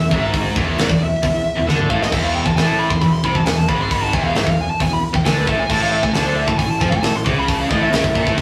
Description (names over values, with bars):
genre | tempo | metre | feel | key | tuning
heavy metal | 134 BPM | 4/4 | straight | unclear | A4 = 436 Hz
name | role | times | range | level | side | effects
high-gain lead guitar | melody | 0.0-8.4 s | B4 to D6 | -24 LUFS | equal | distortion
heavy high-gain guitar | riff | 0.0-8.4 s | E2 to F3 | -24 LUFS | equal | distortion
scooped high-gain guitar | riff | 0.0-8.4 s | E2 to F3 | -25 LUFS | equal | distortion
fuzz fingered electric bass | bass | 0.0-8.4 s | E1 to F2 | -26 LUFS | equal | overdrive
tight metal drum kit | drums | 0.1-8.4 s | crash cymbal, hi-hat, kick drum, snare drum, toms | -23 LUFS | equal | none
room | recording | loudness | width
moderate studio reverb, RT60 0.6 s | rough rehearsal-room recording, warm saturation, small room ambience | -17 LUFS | mono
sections
0.0-8.4 A section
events
lead electric guitar solo 0.0-8.4; drum fill 1.7-2.1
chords
0.0 E; 5.7 A5